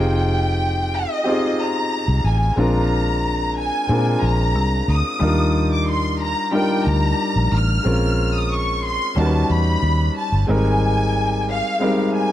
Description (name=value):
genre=lush 1970s-style soul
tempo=91 BPM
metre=4/4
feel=straight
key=unclear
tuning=A4 = 440 Hz
part: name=rich studio violin section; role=melody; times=0.0-12.3 s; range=Eb5 to F6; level=-23 LUFS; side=equal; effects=none
part: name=clear grand piano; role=accompaniment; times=0.0-12.3 s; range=G3 to B4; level=-22 LUFS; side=left 1 dB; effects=none
part: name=vintage muted fingered electric bass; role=bass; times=0.0-11.6 s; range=F1 to Bb2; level=-20 LUFS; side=equal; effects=none
room=light reverb, small room ambience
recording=dark, warm production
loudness=-17 LUFS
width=side -12 dB against mid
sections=0.0-12.3 A section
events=none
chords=0.0 Fm9; 2.6 Bb7; 5.2 Ebmaj9; 7.9 Bbm9; 9.2 Eb7alt; 10.5 Abmaj9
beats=0.60 1.26 1.92 | 2.58 3.24 3.90 4.56 | 5.22 5.88 6.54 7.20 | 7.86 8.51 9.17 9.83 | 10.49 11.15 11.81